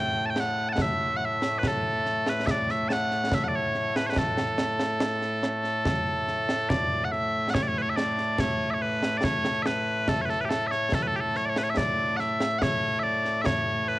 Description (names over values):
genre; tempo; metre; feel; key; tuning
scottish traditional, Scottish pipe music; 71 BPM; 3/4; straight; A major; A4 = 440 Hz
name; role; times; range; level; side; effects
loud bright bagpipes; melody; 0.0-14.0 s; A2 to A5; -25 LUFS; equal; cassette tape
concert snare drum and concert bass drum; drums; 0.4-13.7 s; none; -30 LUFS; equal; cassette tape
room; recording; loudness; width
light reverb, small room ambience; home recording on cassette; -24 LUFS; side -18 dB against mid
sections
0.0-6.7 A section; 6.7-14.0 B section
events
none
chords
none